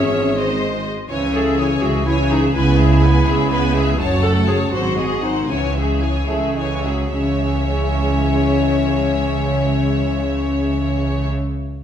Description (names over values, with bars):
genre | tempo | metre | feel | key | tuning
cinematic, playful, whimsical film cue | 70-84 BPM (dotted quarters) | 6/8 | straight | C# minor | A4 = 440 Hz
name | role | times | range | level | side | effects
rich studio violin section | melody | 0.0-11.3 s | D#5 to A5 | -28 LUFS | left 3 dB | none
bright studio violin section | second line | 0.0-11.3 s | G#4 to C#5 | -25 LUFS | left 2 dB | none
mellow clarinet | second line | 0.0-11.3 s | C#4 to A4 | -23 LUFS | left 2 dB | none
rich studio viola section | accompaniment | 0.0-11.3 s | E3 to C#4 | -26 LUFS | right 2 dB | none
mellow French horn section | sustained chords | 0.0-11.3 s | D#3 to C#4 | -25 LUFS | left 3 dB | none
clear studio double bass section | bass | 0.0-11.3 s | F#1 to C#2 | -22 LUFS | right 1 dB | none
rich studio cello section | bass | 0.0-11.3 s | F#2 to C#3 | -22 LUFS | right 3 dB | none
clear bassoon | accompaniment | 6.3-7.1 s | F#3 to A3 | -27 LUFS | right 1 dB | none
room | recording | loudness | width
wet recital hall reverb, RT60 1.3 s | heard from further back in the room | -16 LUFS | side -9 dB against mid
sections
0.0-7.1 A section; 7.1-10.5 B section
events
slowing down 3.3-7.1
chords
0.4 G#; 1.1 C#m; 2.5 E/C#; 4.0 F#m; 4.7 G#7; 5.5 C#m